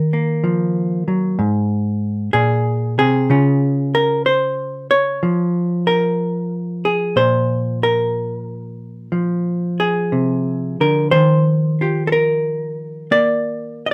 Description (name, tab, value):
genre	solo jazz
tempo	62 BPM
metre	4/4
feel	swing 68% on 8ths, rubato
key	unclear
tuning	A4 = 441 Hz
part	hollow-body jazz guitar	solo	0.0-13.9 s	Ab2 to Eb5	-18 LUFS	equal	none
room	moderate studio reverb, RT60 0.6 s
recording	none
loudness	-18 LUFS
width	mono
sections	0.0-13.9 A section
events	none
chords	0.0 Ebm; 1.4 Ab; 3.3 Db; 7.2 Bb7(no3); 11.1 Ebsus2